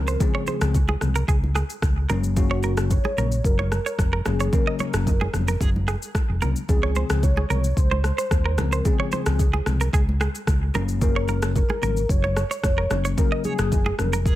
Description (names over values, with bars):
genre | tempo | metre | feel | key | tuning
afrobeats | 111 BPM | 4/4 | straight | unclear | A4 = 440 Hz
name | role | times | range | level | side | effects
warm velvety synth lead | melody | 0.0-14.4 s | Gb4 to Db5 | -30 LUFS | equal | chorus, tape echo
bell-like tine electric piano | accompaniment | 0.0-14.1 s | Db3 to Db4 | -29 LUFS | left 7 dB | none
fingered electric bass | bass | 0.0-14.4 s | F1 to Eb2 | -23 LUFS | equal | none
direct-recorded clean electric guitar | riff | 0.1-14.3 s | Ab4 to Eb5 | -30 LUFS | right 5 dB | tape echo
afro-pop drum kit | drums | 0.1-14.4 s | kick drum, rim click, shaker | -24 LUFS | equal | none
congas | percussion | 0.2-14.1 s | none | -34 LUFS | right 2 dB | none
room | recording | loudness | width
digital ambience | none | -20 LUFS | side -14 dB against mid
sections
0.0-14.4 A section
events
none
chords
0.0 Dbmaj7; 2.1 Gb; 6.7 Dbmaj7; 10.7 Gb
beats
| 0.20 0.74 1.28 1.82 | 2.37 2.91 3.45 3.99 | 4.53 5.07 5.61 6.15 | 6.69 7.23 7.77 8.31 | 8.85 9.39 9.93 10.47 | 11.02 11.55 12.10 12.64 | 13.18 13.72 14.26